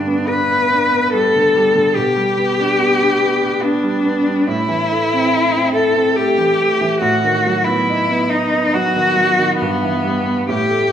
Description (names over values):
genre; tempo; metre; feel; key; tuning
classical, romantic duo for cello and grand piano; 71 BPM; 3/4; rubato; unclear; A4 = 441 Hz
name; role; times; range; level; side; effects
clear cello; melody; 0.0-10.9 s; B3 to B4; -15 LUFS; left 2 dB; none
bright concert grand piano; accompaniment; 0.0-10.9 s; G2 to E4; -20 LUFS; right 3 dB; none
room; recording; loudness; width
wet recital hall reverb, RT60 1.6 s; minimal, uncompressed stereo recording; -13 LUFS; side -9 dB against mid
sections
0.0-10.9 A section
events
none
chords
0.0 G; 2.0 G/B; 4.5 Am; 7.0 B7/A; 9.6 Em/G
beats
0.28 1.13 | 1.96 2.80 3.63 | 4.48 5.33 6.17 | 7.02 7.86 8.72 | 9.59 10.51